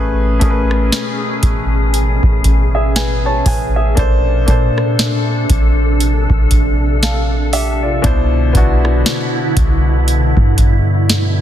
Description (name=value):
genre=contemporary R&B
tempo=59 BPM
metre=4/4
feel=swing 58% on 16ths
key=unclear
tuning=A4 = 438 Hz
part: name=warm grand piano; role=accompaniment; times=0.0-11.4 s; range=B2 to A5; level=-20 LUFS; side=left 2 dB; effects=none
part: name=glassy FM pad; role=sustained chords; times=0.0-11.4 s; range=B2 to A4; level=-20 LUFS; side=left 1 dB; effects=ensemble chorus, built-in reverb
part: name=clean 808-style bass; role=bass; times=0.0-11.4 s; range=A1 to Bb2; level=-15 LUFS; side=equal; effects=none
part: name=booming analog drum machine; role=drums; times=0.4-11.4 s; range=hi-hat, kick drum, rim click, snare drum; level=-15 LUFS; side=equal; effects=soft clipping on snare
room=digital ambience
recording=dense, heavily limited modern master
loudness=-12 LUFS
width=side -11 dB against mid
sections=0.0-11.4 A section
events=none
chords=0.0 Amaj9; 4.0 Bbmaj9; 8.0 Cmaj9